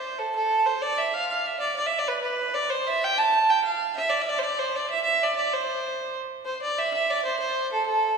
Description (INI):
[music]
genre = celtic folk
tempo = 127 BPM (dotted quarters)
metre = 6/8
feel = straight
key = C major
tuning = A4 = 441 Hz
[part]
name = rich fiddle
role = solo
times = 0.0-8.2 s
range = A4 to A5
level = -23 LUFS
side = right 2 dB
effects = none
[sound]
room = wet concert hall reverb, RT60 2.4 s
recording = recorded in a church or concert hall, small room ambience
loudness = -23 LUFS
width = side -5 dB against mid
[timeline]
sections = 0.0-6.5 A section; 6.5-8.2 A section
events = none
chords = none